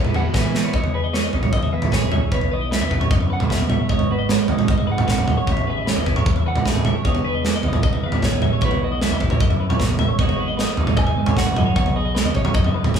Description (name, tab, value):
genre	math rock and midwest emo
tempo	152 BPM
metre	4/4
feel	straight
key	E major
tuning	A4 = 440 Hz
part	clean electric guitar	accompaniment	0.0-13.0 s	E2 to B4	-27 LUFS	right 6 dB	spring reverb
part	twelve-string electric guitar	arpeggios	0.0-13.0 s	F#4 to E5	-28 LUFS	left 4 dB	none
part	overdriven electric guitar	riff	0.0-0.7 s	E3 to E4	-30 LUFS	right 2 dB	spring reverb
part	growling picked electric bass	bass	0.0-13.0 s	E1 to E3	-25 LUFS	equal	overdrive
part	modern studio drum kit	drums	0.0-13.0 s	kick drum, snare drum, toms	-19 LUFS	right 1 dB	none
part	electric guitar through a small old amp	melody	0.2-12.9 s	B4 to G#5	-28 LUFS	equal	none
room	moderate large studio reverb, RT60 0.9 s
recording	band playing live in one room, studio ambience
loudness	-17 LUFS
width	side -7 dB against mid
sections	0.7-13.0 A section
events	drum fill 0.5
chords	0.0 Eadd9; 0.7 Emaj7; 2.3 Bsus4; 3.9 G#m7; 5.5 Amaj9; 7.0 Emaj7; 8.6 B7sus4; 10.2 G#m7; 11.8 B13